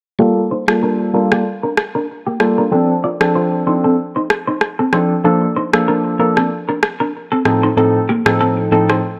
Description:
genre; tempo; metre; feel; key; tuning
afrobeats; 95 BPM; 4/4; swing 55% on 16ths; G minor; A4 = 438 Hz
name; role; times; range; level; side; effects
soft electric-piano-like synth keys; accompaniment; 0.2-9.0 s; A2 to A4; -17 LUFS; equal; chorus, low-pass filter
clean electric guitar; riff; 0.2-9.0 s; Bb3 to D5; -21 LUFS; equal; lush chorus, low-pass filter, digital delay
electronic rim click; drums; 0.7-9.0 s; none; -19 LUFS; equal; none
room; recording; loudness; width
light reverb; none; -16 LUFS; mono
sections
0.2-9.2 A section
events
hi-hats muted 0.2-9.2; filter sweep 0.2-9.2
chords
0.2 Gm9; 2.7 Dm7; 5.2 Bbmaj7; 7.5 F7/A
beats
| 0.19 0.82 1.46 2.09 | 2.72 3.35 3.98 4.61 | 5.25 5.88 6.51 7.14 | 7.77 8.40

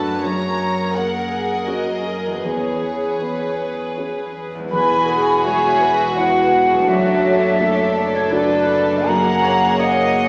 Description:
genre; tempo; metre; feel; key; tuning
cinematic, emotional film score for orchestra; 82 BPM; 3/4; uneven beats, rubato; E lydian; A4 = 441 Hz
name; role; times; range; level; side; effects
dark studio violin section; melody; 0.0-10.3 s; A4 to A#5; -24 LUFS; equal; none
warm studio violin section; second line; 0.0-10.3 s; A#3 to B4; -24 LUFS; equal; none
dark baby grand piano; accompaniment; 0.0-10.3 s; E2 to G#4; -24 LUFS; equal; none
rich studio viola section; accompaniment; 0.0-10.3 s; F#4 to D#5; -23 LUFS; equal; none
concert harp; arpeggios; 0.0-10.3 s; E2 to G#4; -28 LUFS; equal; none
warm studio cello section; bass; 0.0-10.3 s; E2 to F#2; -32 LUFS; equal; none
hollow concert flute; second line; 4.7-10.3 s; C#5 to B5; -17 LUFS; equal; none
dark studio double bass section; bass; 4.7-10.3 s; E1 to F#1; -33 LUFS; equal; none
room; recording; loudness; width
wet scoring stage reverb, RT60 1.4 s; heard from further back in the room, vinyl crackle, small speaker sound; -15 LUFS; side -30 dB against mid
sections
0.0-4.7 A section; 4.7-10.3 A section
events
none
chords
0.2 F#add9; 2.4 C#m7/E; 4.7 Eadd9; 6.9 D/F#; 9.1 F#add9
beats
| 0.24 0.95 1.68 | 2.45 3.21 3.98 | 4.72 5.45 6.17 | 6.89 7.61 8.32 | 9.08 9.79

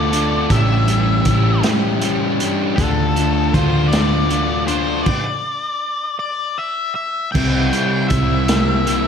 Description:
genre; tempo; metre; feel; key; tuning
indie rock; 53 BPM (dotted quarters); 6/8; straight; D minor; A4 = 441 Hz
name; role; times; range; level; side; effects
octave-fuzz lead guitar; melody; 0.0-9.1 s; A4 to G5; -22 LUFS; left 3 dB; distortion, slapback echo
overdriven electric guitar; riff; 0.0-9.1 s; A2 to A4; -21 LUFS; left 10 dB; slapback echo
sludgy distorted guitar; riff; 0.0-9.1 s; A2 to F4; -21 LUFS; right 9 dB; overdrive, analog chorus
hollow-body short-scale picked electric bass; bass; 0.0-9.1 s; A1 to D2; -20 LUFS; equal; none
vintage drum kit; drums; 0.1-9.0 s; crash cymbal, hi-hat, kick drum, snare drum; -20 LUFS; right 1 dB; none
analog string pad; sustained chords; 7.4-9.1 s; G3 to Bb4; -29 LUFS; right 1 dB; none
room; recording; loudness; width
moderate lush hall reverb, RT60 2.0 s, studio ambience; big arena sound; -15 LUFS; side -7 dB against mid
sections
0.0-7.3 A section; 7.3-9.1 B section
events
stop 5.1-7.3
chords
0.0 Dm; 0.5 A7sus4; 2.8 Dm; 5.1 N.C.; 7.3 C7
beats
| 0.51 1.64 | 2.78 3.92 | 5.06 6.21 | 7.34 8.49

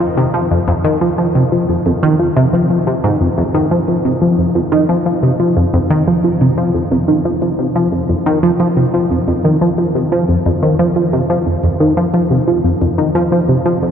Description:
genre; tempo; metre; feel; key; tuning
ambient; 89 BPM; 4/4; straight; unclear; A4 = 438 Hz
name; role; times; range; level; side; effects
tight sequenced synth; solo; 0.0-13.9 s; F2 to F3; -12 LUFS; equal; chorus, analog delay
room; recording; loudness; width
wet cathedral reverb, RT60 7.2 s; in a vast, echoing space; -12 LUFS; side -8 dB against mid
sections
0.0-13.9 A section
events
none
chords
none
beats
| 0.51 1.19 1.86 2.54 | 3.21 3.88 4.56 5.23 | 5.91 6.58 7.25 7.93 | 8.60 9.28 9.95 10.62 | 11.30 11.97 12.65 13.32

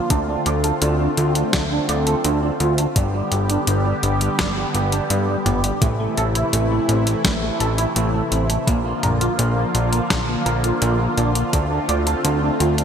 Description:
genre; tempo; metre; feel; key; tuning
synthwave; 84 BPM; 4/4; straight; unclear; A4 = 441 Hz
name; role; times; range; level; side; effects
soft supersaw; sustained chords; 0.0-12.8 s; C3 to G4; -22 LUFS; equal; phaser, sidechain pumping
clean electric guitar; riff; 0.1-12.8 s; G3 to D5; -25 LUFS; right 3 dB; analog chorus, low-pass filter, ping-pong delay
fat analog bass; bass; 0.1-12.8 s; G1 to G2; -21 LUFS; equal; tube saturation, sidechain pumping
clean 12-bit digital drum machine; drums; 0.1-12.8 s; hi-hat, snare drum, toms; -24 LUFS; left 1 dB; none
electronic kick drum; drums; 0.1-11.7 s; none; -21 LUFS; left 1 dB; overdrive
room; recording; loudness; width
moderate lush hall reverb, RT60 2.9 s; bright 1980s-style digital production; -17 LUFS; side -7 dB against mid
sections
0.0-12.8 A section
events
none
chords
0.1 Dm7; 3.0 G; 5.8 Am; 8.7 Bb; 11.5 Dm7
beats
| 0.10 0.82 1.53 2.25 | 2.96 3.67 4.39 5.10 | 5.82 6.53 7.25 7.96 | 8.67 9.39 10.10 10.82 | 11.53 12.25

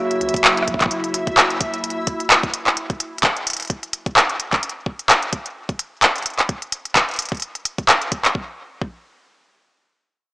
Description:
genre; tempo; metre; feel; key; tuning
IDM; 129 BPM; 4/4; swing 56% on 16ths; unclear; A4 = 439 Hz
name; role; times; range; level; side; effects
warbly tape-like pad; sustained chords; 0.0-0.9 s; C#3 to F#4; -26 LUFS; equal; chorus, built-in reverb, vintage 12-bit sampler grit
backwards swelling texture; texture; 0.0-0.9 s; E4 to E5; -27 LUFS; equal; built-in reverb
organic electronic drum kit; drums; 0.1-8.3 s; handclaps, hi-hat, rim click; -16 LUFS; equal; tape echo
warm sub bass; bass; 0.2-0.9 s; A#1 to C#2; -36 LUFS; equal; tube saturation
electronic kick drum; drums; 0.3-9.0 s; none; -25 LUFS; equal; none
room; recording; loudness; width
light reverb, digital ambience; dry, gritty hardware recording, small speaker sound; -17 LUFS; side -23 dB against mid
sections
0.0-8.3 A section; 8.3-10.3 B section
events
none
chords
0.0 F#; 0.9 N.C.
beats
0.44 | 0.91 1.37 1.84 2.30 | 2.77 3.23 3.70 4.16 | 4.63 5.09 5.56 6.03 | 6.49 6.96 7.42 7.88 | 8.35 8.81

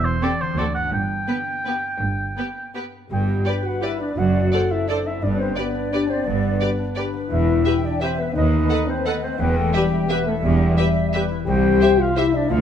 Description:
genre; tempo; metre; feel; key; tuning
classical, orchestral ballroom waltz; 171 BPM; 3/4; uneven beats, rubato; G major; A4 = 440 Hz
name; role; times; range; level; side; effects
warm oboe; second line; 0.0-2.7 s; C5 to G5; -25 LUFS; right 2 dB; none
concert harp; arpeggios; 0.0-12.6 s; F#2 to E5; -28 LUFS; left 8 dB; none
clear symphonic cello section; bass; 0.0-12.6 s; C2 to G2; -25 LUFS; right 3 dB; none
rich symphonic double bass section; bass; 0.0-12.6 s; E1 to D#2; -25 LUFS; right 3 dB; none
rich symphonic violin section; melody; 0.2-12.3 s; A4 to F#5; -32 LUFS; equal; none
rich symphonic violin section; second line; 0.2-12.2 s; F#4 to C5; -34 LUFS; left 3 dB; none
rich symphonic viola section; accompaniment; 0.2-12.2 s; B3 to A4; -29 LUFS; right 2 dB; none
warm clarinet; second line; 3.1-12.6 s; G4 to G5; -29 LUFS; equal; none
dark French horn section; sustained chords; 3.1-12.6 s; G3 to G4; -23 LUFS; left 4 dB; none
flute section; second line; 3.5-12.6 s; A4 to G5; -28 LUFS; left 1 dB; none
room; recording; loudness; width
moderate recital hall reverb, RT60 1.3 s; none; -18 LUFS; side -8 dB against mid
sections
0.0-3.1 A section; 3.1-12.6 B section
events
none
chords
0.0 Am7/E; 0.6 D7; 0.9 G; 4.2 D7/F#; 5.2 G; 7.3 Em; 8.4 B7/D#; 9.4 Em; 11.5 C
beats
0.23 0.59 | 0.94 1.29 1.67 | 2.02 2.38 2.75 | 3.11 3.46 3.82 | 4.17 4.52 4.88 | 5.22 5.56 5.92 | 6.26 6.61 6.97 | 7.31 7.66 8.02 | 8.36 8.70 9.06 | 9.40 9.74 10.10 | 10.44 10.78 11.14 | 11.47 11.81 12.17 | 12.51

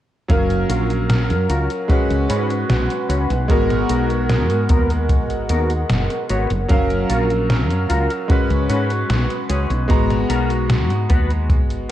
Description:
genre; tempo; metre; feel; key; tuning
vaporwave; 75 BPM; 4/4; straight; G# dorian; A4 = 439 Hz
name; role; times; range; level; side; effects
bright electric grand piano; accompaniment; 0.3-11.9 s; F#3 to A#5; -22 LUFS; equal; lush chorus, vintage 12-bit sampler grit, analog delay
warbly tape-like pad; sustained chords; 0.3-9.9 s; A#4 to E#6; -28 LUFS; right 1 dB; chorus, built-in reverb
woody fretless electric bass; bass; 0.3-11.9 s; F#1 to G#2; -20 LUFS; equal; none
detuned 8-bit digital drum machine; drums; 0.3-11.9 s; hi-hat, snare drum; -23 LUFS; equal; overdrive, gated reverb
kick drum; drums; 0.3-11.7 s; none; -18 LUFS; equal; none
semi-hollow electric guitar; riff; 0.7-11.9 s; B3 to C#5; -26 LUFS; left 2 dB; analog chorus, vintage 12-bit sampler grit, low-pass filter, analog delay
room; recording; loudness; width
light reverb; cassette tape; -16 LUFS; side -12 dB against mid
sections
0.3-11.9 A section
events
filter sweep on clean electric guitar 0.3-11.9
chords
0.3 F#maj7; 1.9 C#7sus4; 3.5 G#m9; 6.7 F#maj7; 8.3 C#7sus4; 9.9 G#m9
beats
| 0.30 1.10 1.90 2.70 | 3.50 4.30 5.10 5.90 | 6.70 7.50 8.30 9.10 | 9.90 10.70 11.50

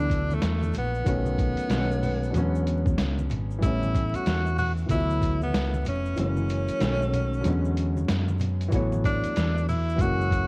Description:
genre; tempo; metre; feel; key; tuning
hip hop, jazz-hop; 94 BPM; 4/4; swing 63% on 16ths; A major; A4 = 437 Hz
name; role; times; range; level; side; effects
breathy tenor saxophone; melody; 0.0-10.5 s; A3 to F#4; -30 LUFS; equal; cassette tape
warm concert grand piano; accompaniment; 0.0-10.5 s; D3 to C#5; -30 LUFS; left 1 dB; cassette tape
hollow-body short-scale fingered electric bass; bass; 0.0-10.5 s; F1 to F#2; -26 LUFS; equal; none
trip hop sampler-style drum kit; drums; 0.1-10.5 s; hi-hat, kick drum, snare drum; -29 LUFS; equal; cassette tape
maracas and congas; percussion; 0.1-10.5 s; none; -36 LUFS; equal; none
room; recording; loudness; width
light reverb, small room ambience; home recording on cassette, vinyl crackle; -23 LUFS; side -28 dB against mid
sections
0.0-10.5 A section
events
kick muted 6.2-8.7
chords
0.0 D69; 1.1 B7; 1.7 B13; 2.3 E13; 3.6 A7; 4.9 D69; 6.2 F#7; 6.8 B13; 7.4 E13; 8.7 A69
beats
0.43 | 1.06 1.70 2.34 2.98 | 3.62 4.26 4.89 5.53 | 6.17 6.81 7.45 8.09 | 8.72 9.36 10.00

